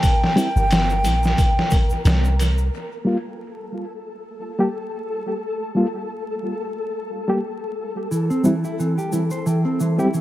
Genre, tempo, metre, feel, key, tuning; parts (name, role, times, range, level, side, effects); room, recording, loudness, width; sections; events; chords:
trip hop; 89 BPM; 4/4; swing 56% on 16ths; A4 = 440 Hz
baroque flute; melody; 0.0-2.4 s; G5; -23 LUFS; right 1 dB; tape echo
trip hop sampler-style drum kit; drums; 0.0-2.6 s; hi-hat, kick drum, snare drum; -20 LUFS; equal; tape echo
tube shaker; percussion; 0.0-2.7, 8.1-10.2 s; -39 LUFS; left 2 dB; tape echo
flickering grainy texture; texture; 0.0-10.2 s; A4 to Bb4; -30 LUFS; left 2 dB; built-in reverb
mellow reed electric piano; accompaniment; 0.4-10.1 s; G3 to G4; -23 LUFS; equal; fast tremolo, harmonic tremolo, vintage 12-bit sampler grit, tape echo
soft 808-style bass; bass; 0.6-2.7 s; G1 to C2; -18 LUFS; equal
mellow electric guitar; arpeggios; 8.1-10.2 s; E3 to C5; -20 LUFS; right 1 dB; tape echo
light reverb; echo-heavy mix, vinyl crackle; -19 LUFS; side -14 dB against mid
0.0-2.7 A section; 2.7-10.2 B section
0.0 C5/G; 2.7 N.C.; 8.1 C